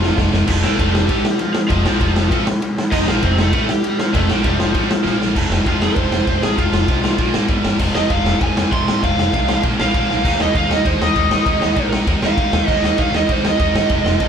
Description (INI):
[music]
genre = punk rock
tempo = 197 BPM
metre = 4/4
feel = straight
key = F mixolydian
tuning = A4 = 439 Hz
[part]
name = lead guitar through a small cranked amp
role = melody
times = 0.0-14.3 s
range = F3 to C6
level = -20 LUFS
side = right 1 dB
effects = overdrive
[part]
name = tight distorted guitar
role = riff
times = 0.0-14.3 s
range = F2 to Eb4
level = -22 LUFS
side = right 1 dB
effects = distortion
[part]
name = upright bass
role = bass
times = 0.0-14.3 s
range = F1 to G2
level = -22 LUFS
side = equal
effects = none
[part]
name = raw garage drum kit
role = drums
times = 0.0-14.3 s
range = crash cymbal, kick drum, ride cymbal, snare drum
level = -18 LUFS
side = equal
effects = none
[sound]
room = moderate studio reverb, RT60 0.6 s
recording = band playing live in one room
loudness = -14 LUFS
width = side -8 dB against mid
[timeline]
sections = 0.5-5.4 A section; 5.4-14.3 B section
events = drum fill 0.0-0.5, 5.1-5.4, 10.1; lead electric guitar solo 5.4-14.3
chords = 0.5 F; 5.1 Bb5; 5.4 F5; 7.2 Bb5; 7.5 G5; 7.8 F5; 9.6 Bb5; 10.2 Eb5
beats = 0.17 | 0.48 0.78 1.09 1.39 | 1.70 2.00 2.31 2.61 | 2.92 3.22 3.53 3.83 | 4.14 4.44 4.75 5.05 | 5.36 5.66 5.97 6.27 | 6.58 6.88 7.19 7.49 | 7.80 8.10 8.41 8.71 | 9.02 9.32 9.63 9.93 | 10.24 10.54 10.85 11.15 | 11.46 11.77 12.07 12.38 | 12.68 12.99 13.29 13.60 | 13.90 14.21